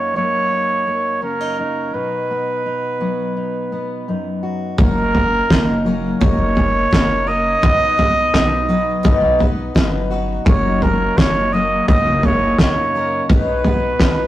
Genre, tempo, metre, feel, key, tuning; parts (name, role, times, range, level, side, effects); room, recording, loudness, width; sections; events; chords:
indie folk with a building arrangement; 85 BPM; 4/4; straight; F# major; A4 = 441 Hz
warm trumpet; melody; 0.0-14.3 s; A#4 to D#5; -19 LUFS; right 1 dB; tape echo
fingerpicked steel-string acoustic guitar; accompaniment; 0.0-14.3 s; F#2 to A#4; -23 LUFS; left 1 dB
picked twelve-string acoustic guitar; accompaniment; 4.8-14.3 s; B2 to B4; -25 LUFS; left 2 dB
upright bass; bass; 4.8-14.3 s; F#1 to F#2; -22 LUFS; equal
cloth-damped thuddy drum kit; drums; 4.8-14.2 s; kick drum, snare drum, toms; -16 LUFS; equal
light reverb; rough rehearsal-room recording, tube saturation; -14 LUFS; side -14 dB against mid
0.0-4.8 A section; 4.8-14.3 A section
0.0 F#6; 1.9 B; 4.8 F#6; 7.6 B; 10.5 F#6; 13.3 B